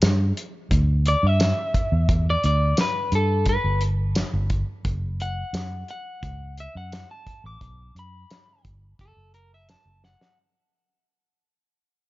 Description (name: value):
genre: straight-eighth soul blues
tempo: 87 BPM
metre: 4/4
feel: straight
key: unclear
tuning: A4 = 437 Hz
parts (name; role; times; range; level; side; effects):
- vintage muted fingered electric bass; bass; 0.0-10.1 s; F#1 to G2; -22 LUFS; equal; none
- warm soul drum kit; drums; 0.0-10.4 s; hi-hat, kick drum, snare drum, tambourine; -25 LUFS; equal; none
- electric guitar at the edge of break-up; melody; 1.1-10.4 s; A4 to D6; -27 LUFS; left 1 dB; none
room: small room ambience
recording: nothing above 7.5 kHz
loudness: -20 LUFS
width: side -18 dB against mid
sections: 0.0-10.4 A section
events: fade-out 0.0-10.4; drum fill 10.0-10.4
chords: 0.0 G5; 4.9 F#5; 7.6 B5; 9.0 F#m